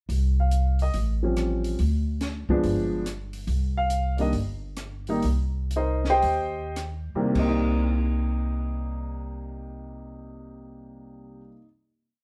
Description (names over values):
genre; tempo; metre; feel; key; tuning
jazz piano trio; 99-142 BPM; 4/4; swing 65% on 8ths; C minor; A4 = 440 Hz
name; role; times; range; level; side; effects
upright bass; bass; 0.1-11.5 s; G1 to Eb2; -29 LUFS; equal; none
compact cocktail drum kit; drums; 0.1-7.5 s; crash cymbal, hi-hat, kick drum, rim click, snare drum; -37 LUFS; equal; none
warm upright piano; melody; 0.4-11.6 s; C2 to G5; -29 LUFS; equal; none
room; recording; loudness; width
moderate studio reverb, RT60 0.9 s; band playing live in one room; -26 LUFS; mono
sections
0.1-7.4 A section; 7.4-12.2 final chord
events
slowing down 3.5-7.4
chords
0.1 Csus4; 0.9 A7alt; 1.8 N.C.; 2.6 G7b9; 3.5 Cm7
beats
| 0.10 0.52 0.94 1.37 | 1.79 2.21 2.64 3.06 | 3.48 3.91 4.34 4.79 | 5.25 5.74 6.25 6.79 | 7.37 7.98 8.58 9.19 | 9.79 10.40 11.00 11.61